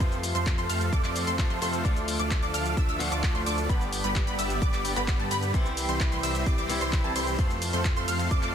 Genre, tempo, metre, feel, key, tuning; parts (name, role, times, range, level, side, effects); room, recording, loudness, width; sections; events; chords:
EDM, festival progressive house; 130 BPM; 4/4; straight; C major; A4 = 439 Hz
picked swing-style acoustic guitar; accompaniment; 0.0-8.5 s; G2 to G4; -35 LUFS; left 3 dB; sidechain pumping, tape echo
lush unison pad; sustained chords; 0.0-8.5 s; G4 to D6; -36 LUFS; right 1 dB; chorus, sidechain pumping
wide unison pluck; arpeggios; 0.0-8.5 s; A5 to F6; -32 LUFS; right 1 dB; wide subtle chorus, sidechain pumping, tape echo
supersaw chords; riff; 0.0-8.5 s; D3 to F5; -33 LUFS; right 1 dB; sidechain pumping, tape echo
wide detuned saw bass; bass; 0.0-8.5 s; G1 to G2; -32 LUFS; equal; chorus, sidechain pumping
big-room dance drum kit; drums; 0.0-8.5 s; handclaps, hi-hat, ride cymbal, shaker; -34 LUFS; left 1 dB
electronic kick drum; drums; 0.0-8.4 s; -26 LUFS; equal
little or no reverb; dense, heavily limited modern master; -24 LUFS; side -8 dB against mid
0.0-8.5 A section
0.0 F; 1.9 Dm; 3.7 G; 5.5 C; 7.4 F